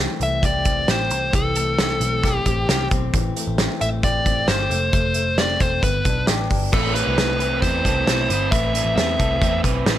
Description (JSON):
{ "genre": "jangly indie pop", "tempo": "134 BPM", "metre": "4/4", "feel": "straight", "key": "unclear", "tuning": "A4 = 442 Hz", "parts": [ { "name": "electric guitar at the edge of break-up", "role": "arpeggios", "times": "0.0-10.0 s", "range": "E3 to B4", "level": "-27 LUFS", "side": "left 5 dB", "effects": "spring reverb" }, { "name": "vintage muted picked electric bass", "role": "bass", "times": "0.0-10.0 s", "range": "E1 to E2", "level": "-24 LUFS", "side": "equal", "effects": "none" }, { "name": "dark smooth lead guitar", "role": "melody", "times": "0.2-9.6 s", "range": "A4 to E5", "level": "-22 LUFS", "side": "left 1 dB", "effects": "overdrive" }, { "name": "loose indie drum kit", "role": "drums", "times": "0.2-10.0 s", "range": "crash cymbal, hi-hat, kick drum, snare drum", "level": "-22 LUFS", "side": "right 1 dB", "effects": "none" }, { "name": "crunchy overdriven guitar", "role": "accompaniment", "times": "6.7-10.0 s", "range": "A3 to B4", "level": "-26 LUFS", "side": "right 8 dB", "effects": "spring reverb" } ], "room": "studio ambience", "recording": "none", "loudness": "-17 LUFS", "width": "side -12 dB against mid", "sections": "0.0-6.7 A section; 6.7-10.0 B section", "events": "none", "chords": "0.0 C6; 3.1 Am7; 4.7 F; 5.8 G; 6.7 Amadd9" }